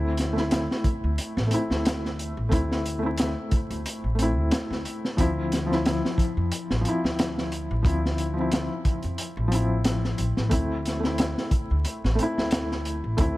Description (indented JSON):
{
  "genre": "trip hop",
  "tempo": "90 BPM",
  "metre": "4/4",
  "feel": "swing 55% on 16ths",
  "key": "D minor",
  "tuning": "A4 = 440 Hz",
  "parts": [
    { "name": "felt-muted upright piano", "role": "accompaniment", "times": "0.0-13.4 s", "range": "F3 to E4", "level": "-28 LUFS", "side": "left 1 dB", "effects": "tremolo, tape echo" },
    { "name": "upright bass", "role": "bass", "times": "0.0-13.4 s", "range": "A1 to F2", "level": "-27 LUFS", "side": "equal", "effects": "none" },
    { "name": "crunchy breakbeat drum kit", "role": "drums", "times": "0.2-13.4 s", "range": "hi-hat, kick drum, snare drum", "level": "-26 LUFS", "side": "equal", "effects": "none" }
  ],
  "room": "little or no reverb",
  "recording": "vinyl crackle",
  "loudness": "-23 LUFS",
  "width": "side -18 dB against mid",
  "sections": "0.0-13.4 A section",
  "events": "none",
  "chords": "0.0 Am; 5.2 Dm9; 10.5 Am",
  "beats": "0.52 1.18 1.85 | 2.52 3.18 3.85 4.51 | 5.18 5.85 6.51 7.18 | 7.85 8.52 9.18 9.85 | 10.52 11.18 11.85 12.52 | 13.18"
}